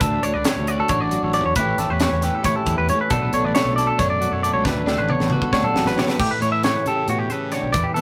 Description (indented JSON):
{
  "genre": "math rock and midwest emo",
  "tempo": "272 BPM (eighths)",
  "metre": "7/8",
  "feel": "straight",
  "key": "unclear",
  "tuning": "A4 = 440 Hz",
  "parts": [
    { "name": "twelve-string electric guitar", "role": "accompaniment", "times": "0.0-8.0 s", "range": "A2 to A4", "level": "-27 LUFS", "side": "equal", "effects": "none" },
    { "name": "clean electric guitar", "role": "arpeggios", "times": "0.0-8.0 s", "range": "F#4 to E5", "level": "-24 LUFS", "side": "equal", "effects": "analog delay" },
    { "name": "fuzz fingered electric bass", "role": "bass", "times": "0.0-8.0 s", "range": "A1 to E3", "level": "-28 LUFS", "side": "equal", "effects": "overdrive" },
    { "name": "crisp fusion drum kit", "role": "drums", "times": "0.0-8.0 s", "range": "crash cymbal, hi-hat, kick drum, snare drum, toms", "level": "-26 LUFS", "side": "equal", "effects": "none" }
  ],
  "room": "moderate studio reverb, RT60 0.5 s",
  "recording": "rough rehearsal-room recording",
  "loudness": "-20 LUFS",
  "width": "mono",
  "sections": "0.0-6.2 A section; 6.2-8.0 B section",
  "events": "drum fill 4.7-6.2",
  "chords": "0.0 Dmaj7; 1.6 A7; 3.1 Bm7; 6.2 A7"
}